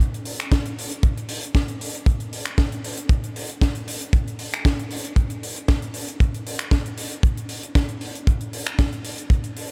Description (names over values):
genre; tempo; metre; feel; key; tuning
nu-disco; 116 BPM; 4/4; straight; none; none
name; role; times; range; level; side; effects
tight funk drum kit; drums; 0.0-9.7 s; finger snaps, hi-hat, snare drum; -31 LUFS; equal; none
kick drum; drums; 0.5-9.4 s; none; -23 LUFS; equal; none
room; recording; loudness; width
light reverb; none; -24 LUFS; mono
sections
0.0-9.7 A section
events
none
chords
none